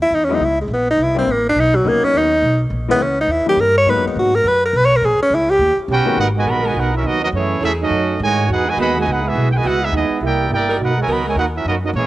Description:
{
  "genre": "jazz, big band swing",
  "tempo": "208 BPM",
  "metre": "4/4",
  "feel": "swing 62% on 8ths",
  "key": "G# minor",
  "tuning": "A4 = 440 Hz",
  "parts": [
    { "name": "clear tenor saxophone", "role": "melody", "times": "0.0-5.8 s", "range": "F#3 to C#5", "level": "-15 LUFS", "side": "equal", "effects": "cassette tape" },
    { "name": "upright bass", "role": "bass", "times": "0.0-12.1 s", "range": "G1 to A#2", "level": "-21 LUFS", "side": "equal", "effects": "none" },
    { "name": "warm concert grand piano", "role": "accompaniment", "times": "0.3-6.2 s", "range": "D#3 to F#4", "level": "-23 LUFS", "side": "left 6 dB", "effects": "cassette tape" },
    { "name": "clear trumpet section", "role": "melody", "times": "5.9-12.1 s", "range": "A3 to B5", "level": "-19 LUFS", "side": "right 1 dB", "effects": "cassette tape" },
    { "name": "mellow trombone section", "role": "second line", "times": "5.9-12.1 s", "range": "A2 to G4", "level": "-21 LUFS", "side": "right 6 dB", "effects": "cassette tape" },
    { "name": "edgy saxophone section", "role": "sustained chords", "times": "6.5-11.5 s", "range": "E3 to A#4", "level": "-26 LUFS", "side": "equal", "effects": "cassette tape" }
  ],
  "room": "moderate spring reverb, RT60 2.6 s",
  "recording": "home recording on cassette",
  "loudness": "-14 LUFS",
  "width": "side -16 dB against mid",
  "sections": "0.0-6.2 A section; 6.2-12.1 B section",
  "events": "tenor saxophone solo 0.0-6.2",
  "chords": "0.4 A#m7b5; 1.0 C9; 1.6 Bmaj7; 2.7 A#m7b5; 3.3 D#7b9; 3.9 G#m9; 5.0 A#m7b5; 5.6 D#7alt; 6.2 G#m9; 7.3 F#m9; 7.9 F#m69; 8.5 Emaj9; 9.6 C#m11; 10.2 C9; 10.8 Bmaj7"
}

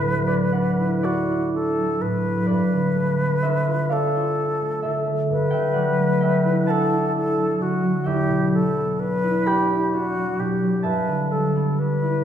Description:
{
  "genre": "classical, impressionist duo for flute and harp",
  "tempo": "43 BPM (dotted quarters)",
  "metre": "6/8",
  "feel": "rubato",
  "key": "unclear",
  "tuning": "A4 = 437 Hz",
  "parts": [
    { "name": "concert flute", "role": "melody", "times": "0.0-12.2 s", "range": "F#4 to B4", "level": "-24 LUFS", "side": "left 2 dB", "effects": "none" },
    { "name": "concert harp", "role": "accompaniment", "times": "0.0-12.2 s", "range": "D2 to B5", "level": "-21 LUFS", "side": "right 1 dB", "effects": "none" }
  ],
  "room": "wet recital hall reverb, RT60 1.4 s",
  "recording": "recorded in a church or concert hall",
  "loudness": "-19 LUFS",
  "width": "side -9 dB against mid",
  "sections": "0.0-12.2 A section",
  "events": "none",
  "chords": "0.0 D69; 2.5 G9; 5.3 Dadd9/G; 8.1 Em9; 10.9 G69"
}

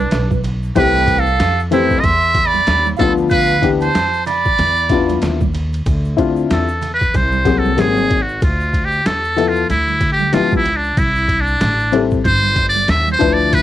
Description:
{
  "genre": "hip hop, jazz-hop",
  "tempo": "94 BPM",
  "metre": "4/4",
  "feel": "swing 58% on 16ths",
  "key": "D dorian",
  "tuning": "A4 = 439 Hz",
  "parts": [
    { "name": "trumpet with metal mute", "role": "melody", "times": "0.0-13.6 s", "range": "D4 to E5", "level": "-16 LUFS", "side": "equal", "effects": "cassette tape" },
    { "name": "breathy jazz flute", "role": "second line", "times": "0.0-5.2 s", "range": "B4 to C6", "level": "-21 LUFS", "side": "right 10 dB", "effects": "cassette tape" },
    { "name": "upright bass", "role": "bass", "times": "0.0-13.6 s", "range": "G1 to F2", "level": "-20 LUFS", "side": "equal", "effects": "none" },
    { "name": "boom bap sampler-style drum kit", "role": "drums", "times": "0.1-13.6 s", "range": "hi-hat, kick drum, ride cymbal, snare drum", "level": "-21 LUFS", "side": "equal", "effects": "cassette tape" },
    { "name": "tube shaker and congas", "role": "percussion", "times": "0.1-13.6 s", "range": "none", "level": "-28 LUFS", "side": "right 10 dB", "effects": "none" },
    { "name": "dark upright piano", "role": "accompaniment", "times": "0.8-13.6 s", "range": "E3 to B4", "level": "-16 LUFS", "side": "left 7 dB", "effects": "cassette tape" }
  ],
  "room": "small room ambience",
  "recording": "home recording on cassette",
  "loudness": "-13 LUFS",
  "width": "side -12 dB against mid",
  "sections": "0.0-5.9 A section; 5.9-13.6 B section",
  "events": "muted trumpet solo 5.9-13.6",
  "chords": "0.0 Bm; 0.8 C6; 3.0 Dm69; 5.9 Dm9; 7.8 G#9; 8.4 G13/D (rootless); 11.0 C6"
}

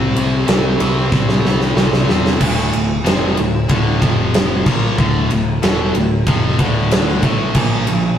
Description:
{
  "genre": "hard rock",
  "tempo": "93 BPM",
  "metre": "4/4",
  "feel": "straight",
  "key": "D minor",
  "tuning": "A4 = 440 Hz",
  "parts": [
    { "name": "high-gain distorted guitar", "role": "riff", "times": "0.0-8.1 s", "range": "D2 to C4", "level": "-18 LUFS", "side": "equal", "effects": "distortion" },
    { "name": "growling picked electric bass", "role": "bass", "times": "0.0-8.2 s", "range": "D1 to E2", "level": "-23 LUFS", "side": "equal", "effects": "overdrive" },
    { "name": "big rock drum kit", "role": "drums", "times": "0.2-8.0 s", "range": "crash cymbal, kick drum, ride cymbal, snare drum", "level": "-16 LUFS", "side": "equal", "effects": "none" }
  ],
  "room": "light reverb",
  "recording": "rough rehearsal-room recording",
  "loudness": "-13 LUFS",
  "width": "side -9 dB against mid",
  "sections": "0.0-2.4 A section; 2.4-8.2 B section",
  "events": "drum fill 1.1-2.4",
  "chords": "0.0 C5; 2.4 Dm; 4.0 F5; 4.7 Dm; 7.6 Bb5"
}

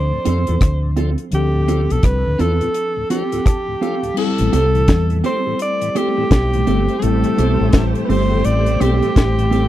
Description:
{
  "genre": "lovers rock reggae",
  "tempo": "84 BPM",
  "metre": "4/4",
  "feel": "swing 62% on 16ths",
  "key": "A minor",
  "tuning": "A4 = 439 Hz",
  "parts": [
    { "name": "warm alto saxophone", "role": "melody", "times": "0.0-9.7 s", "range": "G4 to D5", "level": "-21 LUFS", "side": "right 1 dB", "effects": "tape echo" },
    { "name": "mellow tine electric piano", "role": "accompaniment", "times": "0.0-9.7 s", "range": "F3 to A5", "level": "-25 LUFS", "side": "left 5 dB", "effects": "medium stereo tremolo, slapback echo" },
    { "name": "fingered electric bass", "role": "bass", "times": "0.0-9.7 s", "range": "G1 to F2", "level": "-17 LUFS", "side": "equal", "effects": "none" },
    { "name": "tonewheel organ", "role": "accompaniment", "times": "0.1-9.7 s", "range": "D2 to D4", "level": "-27 LUFS", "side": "left 5 dB", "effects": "slow rotary speaker" },
    { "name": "mellow electric guitar", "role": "stabs", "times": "0.3-9.7 s", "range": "C4 to A4", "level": "-22 LUFS", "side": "right 5 dB", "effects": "slapback echo" },
    { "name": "deep reggae drum kit", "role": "drums", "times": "0.3-9.7 s", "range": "crash cymbal, hi-hat, kick drum, rim click, snare drum", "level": "-16 LUFS", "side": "equal", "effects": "none" },
    { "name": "soft string machine", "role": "second line", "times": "5.6-9.7 s", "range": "A3 to C5", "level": "-23 LUFS", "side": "right 1 dB", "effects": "ensemble chorus" }
  ],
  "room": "little or no reverb",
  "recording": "dry, close 1970s-style studio recording",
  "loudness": "-14 LUFS",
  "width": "side -13 dB against mid",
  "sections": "0.0-4.2 A section; 4.2-9.7 B section",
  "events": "tine electric piano fill 3.1-4.2",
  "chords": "0.0 Dm7; 4.2 Am7"
}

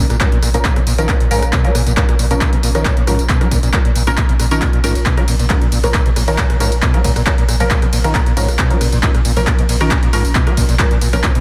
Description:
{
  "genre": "driving peak-time techno",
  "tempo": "136 BPM",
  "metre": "4/4",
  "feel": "straight",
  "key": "Bb phrygian",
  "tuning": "A4 = 445 Hz",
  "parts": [
    { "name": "screaming distorted acid line", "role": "riff", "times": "0.0-11.4 s", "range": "Ab2 to Ab3", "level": "-23 LUFS", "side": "equal", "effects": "distortion, ensemble chorus, sidechain pumping, analog delay" },
    { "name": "filtered dub chord stab", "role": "stabs", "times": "0.0-11.2 s", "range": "F3 to Bb4", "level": "-23 LUFS", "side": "equal", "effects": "phaser, subtle chorus, sidechain pumping, analog delay" },
    { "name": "warm sub bass", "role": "bass", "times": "0.0-11.4 s", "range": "Bb1", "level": "-21 LUFS", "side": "equal", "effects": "overdrive, sidechain pumping, low-pass filter" },
    { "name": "punchy analog drum machine", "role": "drums", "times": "0.1-11.4 s", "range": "handclaps, hi-hat, ride cymbal, rim click, tambourine", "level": "-23 LUFS", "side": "equal", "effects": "overdrive" },
    { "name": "electronic kick drum", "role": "drums", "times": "0.2-11.3 s", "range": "none", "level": "-18 LUFS", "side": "equal", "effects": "none" }
  ],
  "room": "moderate lush hall reverb, RT60 1.6 s",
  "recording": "dreamy mix soaked in reverb",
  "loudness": "-15 LUFS",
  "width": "mono",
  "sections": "0.0-11.4 A section",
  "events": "none",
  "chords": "0.0 Bbm"
}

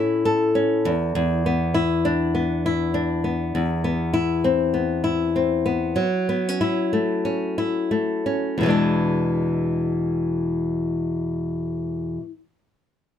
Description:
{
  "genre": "pop",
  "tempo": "86-101 BPM",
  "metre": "4/4",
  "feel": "swing 60% on 16ths",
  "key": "E mixolydian",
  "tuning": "A4 = 441 Hz",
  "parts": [
    { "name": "flamenco guitar", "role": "accompaniment", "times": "0.0-12.3 s", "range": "E2 to A4", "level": "-20 LUFS", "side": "left 2 dB", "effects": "none" }
  ],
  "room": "light reverb",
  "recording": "close, detailed microphones",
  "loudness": "-20 LUFS",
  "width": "side -9 dB against mid",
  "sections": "0.0-8.6 A section; 8.6-11.4 B section",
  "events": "slowing down 3.5-8.6",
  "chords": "0.0 A; 0.9 E5; 3.5 Cmaj7/E; 6.0 F#m7; 8.6 E7"
}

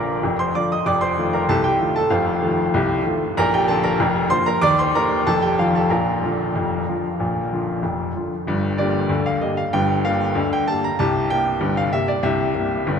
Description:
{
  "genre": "ragtime piano",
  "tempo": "95 BPM",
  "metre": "2/4",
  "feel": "straight",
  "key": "Bb major",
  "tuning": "A4 = 440 Hz",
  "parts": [
    { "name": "clear upright piano", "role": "solo", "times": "0.0-13.0 s", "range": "F1 to Eb6", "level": "-18 LUFS", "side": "equal", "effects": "none" }
  ],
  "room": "wet cathedral reverb, RT60 7.2 s",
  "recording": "recorded in a church or concert hall",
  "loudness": "-18 LUFS",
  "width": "side -7 dB against mid",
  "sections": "0.0-8.5 A section; 8.5-13.0 B section",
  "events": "none",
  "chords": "0.0 F7; 3.4 Bb; 4.6 Eb; 5.3 F7; 5.9 Bb; 8.5 Gm; 11.0 C7"
}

